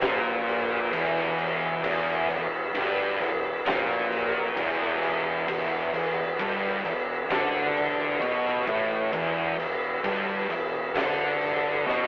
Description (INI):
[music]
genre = stoner and doom metal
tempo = 66 BPM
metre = 4/4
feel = straight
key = E minor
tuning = A4 = 440 Hz
[part]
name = tonewheel organ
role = sustained chords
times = 0.0-12.1 s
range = E3 to B4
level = -33 LUFS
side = equal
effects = slow rotary speaker, overdrive
[part]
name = thick fuzz guitar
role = riff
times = 0.0-12.1 s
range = E2 to D3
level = -28 LUFS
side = left 1 dB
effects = distortion
[part]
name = thick fuzz guitar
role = riff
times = 0.0-12.1 s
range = E2 to D3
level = -31 LUFS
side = right 1 dB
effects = distortion
[part]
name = fuzz fingered electric bass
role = bass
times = 0.0-12.1 s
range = E1 to D2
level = -35 LUFS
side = equal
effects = overdrive
[part]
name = oversized low-tuned drum kit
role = drums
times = 0.0-12.1 s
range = crash cymbal, kick drum, snare drum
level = -29 LUFS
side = equal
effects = none
[sound]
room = light reverb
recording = rough rehearsal-room recording, telephone sound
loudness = -24 LUFS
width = side -26 dB against mid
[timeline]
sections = 0.0-12.1 A section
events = drum fill 11.9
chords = 0.0 Em